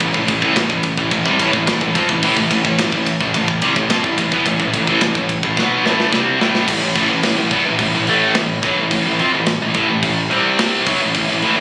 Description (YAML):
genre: heavy metal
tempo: 108 BPM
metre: 4/4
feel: straight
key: A minor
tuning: A4 = 440 Hz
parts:
  - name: scooped high-gain guitar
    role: riff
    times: 0.0-11.6 s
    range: A2 to C4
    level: -18 LUFS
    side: equal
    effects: distortion
  - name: fuzz picked electric bass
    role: bass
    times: 0.0-11.6 s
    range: A1 to F2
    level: -26 LUFS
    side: equal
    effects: overdrive
  - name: tight metal drum kit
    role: drums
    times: 0.0-11.5 s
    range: crash cymbal, kick drum, ride cymbal, snare drum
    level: -23 LUFS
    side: equal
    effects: none
room: studio reverb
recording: recorded on a phone in the room, compression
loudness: -16 LUFS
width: mono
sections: 0.0-6.7 A section; 6.7-11.6 B section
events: drum fill 5.6-6.7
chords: 0.0 Am; 6.7 A5; 10.3 C5; 10.9 A5